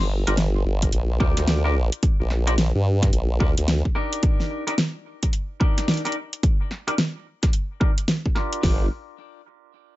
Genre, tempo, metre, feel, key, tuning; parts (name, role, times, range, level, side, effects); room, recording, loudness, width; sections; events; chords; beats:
glitch hop; 109 BPM; 4/4; swing 62% on 16ths; G minor; A4 = 441 Hz
formant-sweep wobble bass; bass; 0.0-3.8, 8.6-8.9 s; G1 to G2; -21 LUFS; equal; chorus, tube saturation
pop drum kit; drums; 0.0-8.6 s; hi-hat, snare drum; -24 LUFS; equal
clean electric guitar; stabs; 0.3-8.9 s; D4 to Bb4; -29 LUFS; left 1 dB; vintage 12-bit sampler grit, sidechain pumping, low-pass filter, ping-pong delay
pop drum kit; drums; 0.8-8.8 s; hi-hat, kick drum, snare drum; -21 LUFS; equal
little or no reverb; nothing above 7.8 kHz; -20 LUFS; side -17 dB against mid
0.0-8.6 A section; 8.6-10.0 B section
filter sweep on clean electric guitar 0.0-8.6
0.0 Gm7; 4.2 Ebmaj7/D; 8.6 Gm7
0.38 0.93 1.48 | 2.03 2.58 3.13 3.68 | 4.23 4.78 5.33 5.88 | 6.43 6.98 7.53 8.08 | 8.63